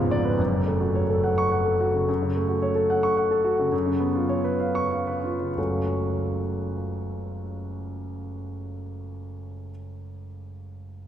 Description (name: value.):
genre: classical, virtuoso piano study.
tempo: 60-74 BPM (dotted quarters).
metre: 6/8.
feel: rubato.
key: F# minor.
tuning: A4 = 440 Hz.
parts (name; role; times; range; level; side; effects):
warm concert grand piano; solo; 0.0-11.1 s; F#1 to C#6; -23 LUFS; equal; none.
room: wet cathedral reverb, RT60 6.0 s.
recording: recorded in a church or concert hall.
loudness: -22 LUFS.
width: side -10 dB against mid.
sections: 0.0-2.1 A section; 2.1-5.6 B section; 5.6-9.4 C section.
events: slowing down 1.2-5.6.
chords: 0.4 F#m; 3.7 C#7/F#; 5.6 F#m.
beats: | 0.39 1.24 | 2.08 2.90 | 3.72 4.61 | 5.57 6.53 | 7.50 8.47.